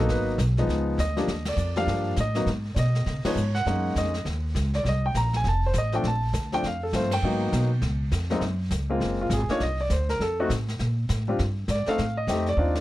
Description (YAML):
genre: jazz piano trio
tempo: 202 BPM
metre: 4/4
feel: swing 62% on 8ths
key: unclear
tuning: A4 = 439 Hz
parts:
  - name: clear baby grand piano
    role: melody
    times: 0.0-12.8 s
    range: Gb2 to Bb5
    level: -26 LUFS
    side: left 1 dB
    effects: none
  - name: upright bass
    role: bass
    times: 0.0-12.8 s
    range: F1 to Db3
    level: -26 LUFS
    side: equal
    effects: none
  - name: jazz brush drum kit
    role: drums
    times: 0.1-12.8 s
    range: brushed snare drum, hi-hat, ride cymbal, snare drum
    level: -35 LUFS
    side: left 1 dB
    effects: none
room: little or no reverb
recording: none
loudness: -23 LUFS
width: side -16 dB against mid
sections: 0.0-8.4 A section; 8.4-12.8 B section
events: band accent 1.4, 3.2, 7.1; drum fill 12.6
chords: 0.1 Abm7; 0.7 Db9; 1.3 Ebmaj7; 2.5 Abm; 3.1 Db5; 3.7 Gb6; 4.9 Bbsus4; 5.4 F; 6.0 Bbmaj7; 7.2 Abm7; 7.8 Db; 8.4 Gbmaj9#11; 9.6 Csus2; 10.2 F; 10.8 Bb6; 12.0 Am7b5